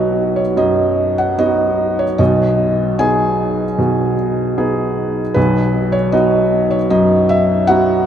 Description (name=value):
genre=classical, lyrical solo piano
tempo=76 BPM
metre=4/4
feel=rubato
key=B major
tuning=A4 = 443 Hz
part: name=felt-muted upright piano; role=solo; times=0.0-8.1 s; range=B1 to G#5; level=-13 LUFS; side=equal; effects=none
room=wet cathedral reverb, RT60 5.2 s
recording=in a vast, echoing space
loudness=-13 LUFS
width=side -9 dB against mid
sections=0.0-8.1 A section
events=none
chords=0.0 B; 2.2 G#m/B; 5.4 B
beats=0.58 1.40 | 2.20 3.00 3.79 4.59 | 5.37 6.14 6.91 7.69